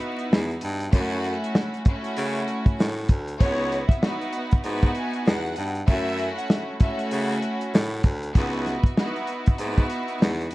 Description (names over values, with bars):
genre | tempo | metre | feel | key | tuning
hip hop, boom-bap hip-hop | 97 BPM | 4/4 | swing 60% on 16ths | F# dorian | A4 = 439 Hz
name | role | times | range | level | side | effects
bright studio string section | accompaniment | 0.0-10.5 s | A3 to F#4 | -28 LUFS | equal | high-pass filter, low-pass filter
warm soul drum kit | drums | 0.0-10.5 s | hi-hat, kick drum, snare drum | -20 LUFS | equal | none
raspy baritone saxophone | bass | 0.3-10.5 s | C#2 to C#3 | -28 LUFS | equal | none
warm studio violin section | melody | 3.4-7.0 s | C#5 to G#5 | -31 LUFS | equal | high-pass filter, low-pass filter, tape echo
room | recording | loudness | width
light reverb | dark, warm production, vinyl crackle | -22 LUFS | side -18 dB against mid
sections
0.0-10.5 A section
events
none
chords
0.0 C#m11 (rootless); 0.9 F#m7; 3.4 C#m11; 5.9 F#m7; 8.4 C#m11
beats
0.31 | 0.93 1.55 2.17 2.79 | 3.40 4.02 4.64 5.26 | 5.88 6.50 7.12 7.73 | 8.35 8.97 9.59 10.21